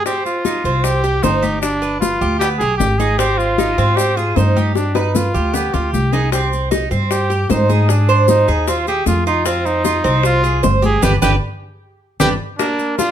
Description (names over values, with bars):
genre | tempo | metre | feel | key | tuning
latin, Cuban son and guajira | 153 BPM | 4/4 | straight | C minor | A4 = 440 Hz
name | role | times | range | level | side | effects
clear trumpet | melody | 0.0-13.1 s | D4 to Ab4 | -19 LUFS | equal | plate reverb
Cuban tres | arpeggios | 0.1-13.1 s | Bb3 to C5 | -19 LUFS | right 4 dB | none
bongos | percussion | 0.1-13.1 s | none | -23 LUFS | left 7 dB | none
congas | percussion | 0.1-13.1 s | none | -24 LUFS | left 3 dB | none
maracas | percussion | 0.1-13.1 s | none | -31 LUFS | left 6 dB | none
upright bass | bass | 0.6-12.3 s | G1 to Ab2 | -18 LUFS | equal | none
room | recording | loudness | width
moderate studio reverb, RT60 0.8 s | none | -14 LUFS | side -10 dB against mid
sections
0.1-12.6 A section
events
drum fill 4.8-6.3, 12.0-12.6; band accent 11.0-12.6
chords
0.1 Cm; 1.6 G; 3.2 Ab; 4.8 G; 6.3 Cm; 7.9 Ab; 9.5 Fm; 11.0 G; 12.6 Bb